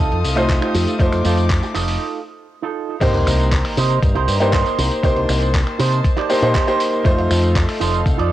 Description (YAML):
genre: nu-disco, nu disco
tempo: 119 BPM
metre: 4/4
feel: straight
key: C dorian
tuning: A4 = 440 Hz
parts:
  - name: bright concert grand piano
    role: accompaniment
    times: 0.0-8.3 s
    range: A3 to C5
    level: -20 LUFS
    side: equal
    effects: sidechain pumping, cassette tape, tape echo
  - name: warm chamber string section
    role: sustained chords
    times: 0.0-8.3 s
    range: A4 to Eb6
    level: -28 LUFS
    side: left 3 dB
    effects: sidechain pumping, cassette tape
  - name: electric guitar with an envelope filter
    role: riff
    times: 0.0-8.3 s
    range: Eb4 to D5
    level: -24 LUFS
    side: right 10 dB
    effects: lush chorus, cassette tape, tape echo
  - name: fingered electric bass with an envelope filter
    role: bass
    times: 0.0-8.3 s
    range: F1 to C3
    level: -19 LUFS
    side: equal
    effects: transformer saturation, sidechain pumping
  - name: dusty soul sampler-style drum kit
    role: drums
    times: 0.0-8.3 s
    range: crash cymbal, finger snaps, handclaps, hi-hat, tambourine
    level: -26 LUFS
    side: equal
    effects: cassette tape
  - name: electronic kick drum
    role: drums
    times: 0.5-8.2 s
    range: none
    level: -18 LUFS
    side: equal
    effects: cassette tape
  - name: sub drop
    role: sound effects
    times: 3.0-5.0 s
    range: none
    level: -27 LUFS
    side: equal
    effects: none
room: light reverb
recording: home recording on cassette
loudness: -15 LUFS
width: side -14 dB against mid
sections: 0.0-3.0 A section; 3.0-8.3 B section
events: filter sweep on clean electric guitar 0.0-3.0; break 2.0-3.0; drop 3.0-8.3; impact 3.0-5.0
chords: 0.0 F7; 3.0 Cm7; 7.1 F7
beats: 0.50 | 1.00 1.50 2.01 2.51 | 3.02 3.52 4.03 4.53 | 5.03 5.54 6.04 6.55 | 7.05 7.55 8.06